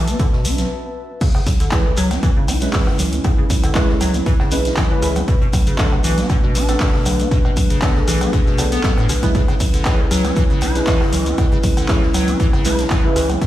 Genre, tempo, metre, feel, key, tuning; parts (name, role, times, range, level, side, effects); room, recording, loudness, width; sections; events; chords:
acid house; 118 BPM; 4/4; swing 53% on 16ths; C# phrygian; A4 = 440 Hz
dark analog pad; sustained chords; 0.0-13.5 s; G#3 to B4; -24 LUFS; left 1 dB; wide subtle chorus, sidechain pumping
acid bass, square; riff; 0.0-13.5 s; A2 to E4; -23 LUFS; equal; wide subtle chorus, analog delay
warm sub bass; bass; 0.0-13.4 s; A1 to C#2; -21 LUFS; equal; sidechain pumping
airy breathy pad; texture; 0.0-0.7 s; F#4 to A5; -31 LUFS; left 2 dB; chorus, sidechain pumping
punchy analog drum machine; drums; 0.1-13.5 s; congas, cowbell, crash cymbal, handclaps, hi-hat, rim click; -25 LUFS; right 1 dB
swinging big-band drum kit; drums; 0.1-13.5 s; hi-hat, snare drum; -34 LUFS; left 2 dB; high-pass filter on hats, high-pass filter on snare, high-pass filter on room
shekere; percussion; 0.1-13.5 s; -30 LUFS; left 1 dB
electronic kick drum; drums; 0.2-13.5 s; -17 LUFS; equal
deep mellow chord stab; stabs; 1.7-13.3 s; F#3 to B4; -25 LUFS; right 2 dB; chorus, analog delay
digital ambience; played on a big sound system in a bare room, stone room reverb; -14 LUFS; side -14 dB against mid
0.0-1.2 A section; 1.2-13.5 B section
filter sweep on acid bass 0.0-1.2; stop 0.7-1.2; drop 1.2-13.5
0.0 Bm7; 1.2 C#m7; 5.3 Bm7; 9.3 C#m7